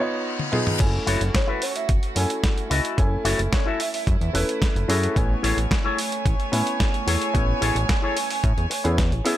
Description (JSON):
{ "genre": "nu-disco, nu disco", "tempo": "110 BPM", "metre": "4/4", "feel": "straight", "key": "F# dorian", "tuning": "A4 = 442 Hz", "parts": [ { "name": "warm grand piano", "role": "accompaniment", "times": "0.0-9.4 s", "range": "A3 to G#5", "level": "-28 LUFS", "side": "equal", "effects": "sidechain pumping, ping-pong delay" }, { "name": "reverse cymbal", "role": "sound effects", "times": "0.0-0.8 s", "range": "none", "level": "-30 LUFS", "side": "left 3 dB", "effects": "none" }, { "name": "dusty soul sampler-style drum kit", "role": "drums", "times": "0.4-9.4 s", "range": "crash cymbal, hi-hat, snare drum, toms", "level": "-28 LUFS", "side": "right 1 dB", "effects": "none" }, { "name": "warm chamber string section", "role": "sustained chords", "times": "0.8-9.4 s", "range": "A3 to G#5", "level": "-30 LUFS", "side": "right 2 dB", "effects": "vintage 12-bit sampler grit, sidechain pumping" }, { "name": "fat analog bass", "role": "bass", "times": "0.8-9.2 s", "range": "E1 to A2", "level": "-24 LUFS", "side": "equal", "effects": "none" }, { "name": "electronic kick drum", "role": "drums", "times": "0.8-9.1 s", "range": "none", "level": "-22 LUFS", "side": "equal", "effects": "none" }, { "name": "electric guitar with an envelope filter", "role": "riff", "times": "1.1-9.4 s", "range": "E4 to E5", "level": "-27 LUFS", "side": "left 4 dB", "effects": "lush chorus, ping-pong delay" }, { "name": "soft octave-layered synth lead", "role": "melody", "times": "1.3-4.0 s", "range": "C#5 to E5", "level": "-32 LUFS", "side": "right 1 dB", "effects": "chorus, phaser, cassette tape, dub echo" } ], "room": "little or no reverb", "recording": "none", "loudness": "-20 LUFS", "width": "side -13 dB against mid", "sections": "0.8-9.4 A section", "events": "break 0.0-0.8; reverse cymbal 0.0-0.8; drum fill 0.4-0.8; drop 0.8-9.4", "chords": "0.0 C#7; 0.8 F#m7; 5.2 Amaj7" }